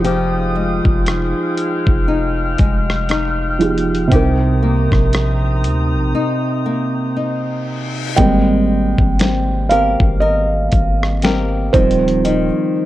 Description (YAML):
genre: contemporary R&B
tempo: 59 BPM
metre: 4/4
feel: swing 58% on 16ths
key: unclear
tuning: A4 = 437 Hz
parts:
  - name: felt-muted upright piano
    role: accompaniment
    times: 0.0-12.9 s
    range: C3 to G5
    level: -18 LUFS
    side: right 3 dB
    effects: none
  - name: clear woodwind section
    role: sustained chords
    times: 0.0-8.1 s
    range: Ab3 to F6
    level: -26 LUFS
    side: left 1 dB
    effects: none
  - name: flamenco guitar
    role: arpeggios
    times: 0.0-12.9 s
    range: C3 to Bb4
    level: -21 LUFS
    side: left 5 dB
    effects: analog delay
  - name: long sustained 808-style bass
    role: bass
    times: 0.0-12.5 s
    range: Eb1 to D2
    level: -19 LUFS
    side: equal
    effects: none
  - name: dusty soul sampler-style drum kit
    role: drums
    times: 0.0-12.5 s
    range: hi-hat, kick drum, rim click, snare drum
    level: -16 LUFS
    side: equal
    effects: vintage 12-bit sampler grit
  - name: reverse cymbal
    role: sound effects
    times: 7.5-8.2 s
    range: none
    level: -29 LUFS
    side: left 7 dB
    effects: none
room: light reverb, small room reverb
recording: dark, warm production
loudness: -14 LUFS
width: side -14 dB against mid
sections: 0.0-8.2 A section; 8.2-12.9 B section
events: break 6.1-8.2; reverse cymbal 7.5-8.2; felt piano solo 8.2-12.9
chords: 0.0 Fm9; 4.1 Cm7; 8.2 Abmaj9; 11.7 Eb6